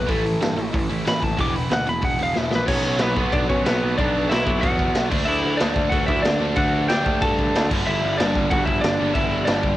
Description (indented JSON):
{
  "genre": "punk rock",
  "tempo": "186 BPM",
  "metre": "4/4",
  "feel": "straight",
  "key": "B minor",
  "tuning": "A4 = 440 Hz",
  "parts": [
    { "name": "lightly driven lead guitar", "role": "melody", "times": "0.0-9.8 s", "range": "B3 to D6", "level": "-23 LUFS", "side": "equal", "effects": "cassette tape" },
    { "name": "distorted electric guitar", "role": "riff", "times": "0.0-9.8 s", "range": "G2 to E4", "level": "-30 LUFS", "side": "right 1 dB", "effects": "overdrive, cassette tape" },
    { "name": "overdriven electric guitar", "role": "riff", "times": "0.0-9.8 s", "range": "E2 to D4", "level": "-26 LUFS", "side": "equal", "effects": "cassette tape" },
    { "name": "overdriven picked electric bass", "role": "bass", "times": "0.0-9.8 s", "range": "E1 to G2", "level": "-26 LUFS", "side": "equal", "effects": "none" },
    { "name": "raw garage drum kit", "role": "drums", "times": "0.1-9.7 s", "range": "crash cymbal, hi-hat, kick drum, snare drum", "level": "-24 LUFS", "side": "equal", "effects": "cassette tape" }
  ],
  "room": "light reverb",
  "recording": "home recording on cassette",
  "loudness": "-18 LUFS",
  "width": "side -14 dB against mid",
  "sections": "0.0-2.7 A section; 2.7-9.8 B section",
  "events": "lead electric guitar solo 0.0-2.7; drum fill 2.4-2.7",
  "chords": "0.1 A; 1.4 E; 2.7 Bm; 5.1 D; 7.7 G",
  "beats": "| 0.09 0.42 0.74 1.07 | 1.40 1.72 2.04 2.37 | 2.69 3.02 3.34 3.66 | 3.99 4.31 4.63 4.95 | 5.28 5.60 5.92 6.25 | 6.57 6.89 7.21 7.54 | 7.86 8.18 8.50 8.82 | 9.15 9.47"
}